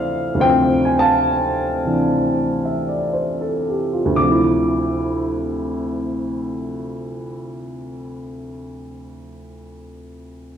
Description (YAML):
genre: solo jazz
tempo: 56-75 BPM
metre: 4/4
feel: swing 67% on 8ths, rubato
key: D minor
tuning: A4 = 441 Hz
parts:
  - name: dark upright piano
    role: solo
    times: 0.0-10.6 s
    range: D2 to D6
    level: -19 LUFS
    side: equal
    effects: none
room: wet recital hall reverb, RT60 1.7 s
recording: recorded in a church or concert hall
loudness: -17 LUFS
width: side -8 dB against mid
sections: 0.0-4.2 A section; 4.2-8.3 B section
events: slowing down 0.0-4.2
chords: 0.0 Dm9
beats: | 0.41 1.26 2.16 3.13 | 4.17 5.23 6.26 7.30